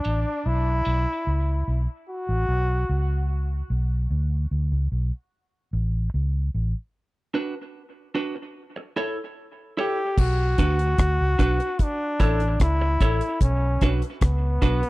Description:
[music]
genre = dub reggae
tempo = 74 BPM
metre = 4/4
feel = straight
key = B minor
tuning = A4 = 440 Hz
[part]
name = brilliant trombone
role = melody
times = 0.0-3.3, 9.8-14.9 s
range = B3 to G4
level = -27 LUFS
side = equal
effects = dub echo
[part]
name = semi-hollow electric guitar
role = accompaniment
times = 0.0-1.1, 7.3-14.9 s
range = D4 to C#5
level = -29 LUFS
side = right 2 dB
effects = high-pass filter, dub echo
[part]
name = vintage muted fingered electric bass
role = bass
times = 0.1-14.8 s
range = A1 to D2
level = -22 LUFS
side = equal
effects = none
[part]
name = deep reggae drum kit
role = drums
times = 10.2-14.9 s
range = crash cymbal, hi-hat, kick drum, rim click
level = -22 LUFS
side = equal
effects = none
[sound]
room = small room reverb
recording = dry, close 1970s-style studio recording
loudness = -22 LUFS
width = side -19 dB against mid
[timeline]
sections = 0.0-10.2 A section; 10.2-14.9 B section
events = break 6.9-10.2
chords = 0.4 Bm; 2.1 N.C.; 3.7 Bm; 5.3 A; 6.9 Bm; 8.6 A; 10.2 Bm; 11.8 A; 13.4 Bm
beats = | 0.45 1.26 2.07 2.88 | 3.69 4.50 5.32 6.13 | 6.94 7.75 8.56 9.37 | 10.18 10.98 11.79 12.60 | 13.41 14.22

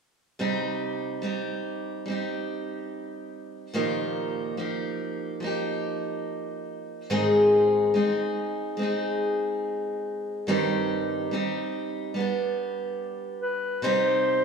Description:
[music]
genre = folk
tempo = 71 BPM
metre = 4/4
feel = straight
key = C minor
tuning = A4 = 440 Hz
[part]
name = picked steel-string acoustic guitar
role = accompaniment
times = 0.4-14.4 s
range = G2 to Ab4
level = -26 LUFS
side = equal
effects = none
[part]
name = mellow clarinet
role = melody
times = 13.4-14.4 s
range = B4 to C5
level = -23 LUFS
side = left 1 dB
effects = none
[sound]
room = wet stone room reverb, RT60 1.3 s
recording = band playing live in one room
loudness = -25 LUFS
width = side -6 dB against mid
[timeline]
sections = 0.4-13.8 A section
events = none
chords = 0.4 Cm; 3.7 Ebadd9/Bb; 7.1 Ab; 10.5 Cm/G; 12.2 G; 13.8 Cm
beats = | 0.39 1.23 2.06 2.90 | 3.75 4.58 5.43 6.27 | 7.11 7.95 8.79 9.63 | 10.47 11.31 12.15 12.99 | 13.83

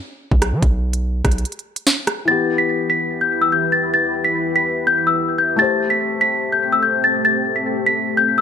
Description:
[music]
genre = hip hop, drill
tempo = 145 BPM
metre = 4/4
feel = half-time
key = E minor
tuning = A4 = 440 Hz
[part]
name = hard-hitting 808-style bass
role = bass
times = 0.3-1.4 s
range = B1 to F#3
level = -19 LUFS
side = equal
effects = none
[part]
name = drill drum kit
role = drums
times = 0.3-2.2 s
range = hi-hat, kick drum, rim click, snare drum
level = -17 LUFS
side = right 1 dB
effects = none
[part]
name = small celesta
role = melody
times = 2.3-8.4 s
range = E6 to B6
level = -16 LUFS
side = left 2 dB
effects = digital delay
[part]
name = felt-muted upright piano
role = accompaniment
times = 2.3-8.4 s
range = E3 to C5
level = -24 LUFS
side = left 5 dB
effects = none
[part]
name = dark analog pad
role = sustained chords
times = 2.8-8.4 s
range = E3 to B4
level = -24 LUFS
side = equal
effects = chorus, tremolo
[sound]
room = light reverb, digital ambience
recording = none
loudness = -16 LUFS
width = side -8 dB against mid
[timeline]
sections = 0.0-2.3 A section; 2.3-8.4 B section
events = break 0.0-0.6, 1.5-2.3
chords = 0.0 B5; 2.3 Em; 5.6 Am7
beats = 0.21 | 0.62 1.04 1.45 1.87 | 2.28 2.69 3.11 3.52 | 3.94 4.35 4.76 5.18 | 5.59 6.00 6.42 6.83 | 7.25 7.66 8.07

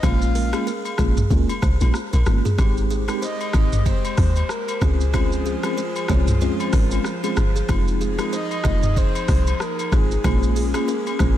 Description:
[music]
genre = afrobeats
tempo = 94 BPM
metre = 4/4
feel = swing 58% on 16ths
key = unclear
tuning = A4 = 440 Hz
[part]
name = breathy flute-like synth lead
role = melody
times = 0.0-11.4 s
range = Ab4 to F5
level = -30 LUFS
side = left 1 dB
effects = chorus, ping-pong delay
[part]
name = mellow tine electric piano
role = accompaniment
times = 0.0-11.4 s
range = Ab3 to G4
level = -26 LUFS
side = equal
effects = medium stereo tremolo
[part]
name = buzzing kalimba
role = riff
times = 0.0-11.3 s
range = Ab4 to Eb5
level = -32 LUFS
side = right 2 dB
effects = ping-pong delay
[part]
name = deep log drum bass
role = bass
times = 0.0-11.4 s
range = F1 to Eb2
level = -20 LUFS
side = equal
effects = none
[part]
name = afro-pop drum kit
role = drums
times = 0.0-11.4 s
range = hi-hat, kick drum, rim click, shaker, toms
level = -24 LUFS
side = equal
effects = vintage 12-bit sampler grit
[part]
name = agogo bells and woodblock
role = percussion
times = 0.0-11.2 s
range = none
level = -33 LUFS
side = left 5 dB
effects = none
[part]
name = airy breathy pad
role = sustained chords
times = 2.6-11.4 s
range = F3 to C5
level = -30 LUFS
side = left 1 dB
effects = chorus
[sound]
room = light reverb, digital ambience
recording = none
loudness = -18 LUFS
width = side -12 dB against mid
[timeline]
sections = 0.0-2.6 A section; 2.6-11.4 B section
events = none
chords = 0.0 Bbm7; 2.6 Abmaj7; 4.8 Dbmaj7; 7.7 Fm7; 10.2 Bbm7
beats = | 0.03 0.67 1.31 1.95 | 2.59 3.22 3.86 4.50 | 5.14 5.78 6.42 7.05 | 7.69 8.33 8.97 9.61 | 10.24 10.88

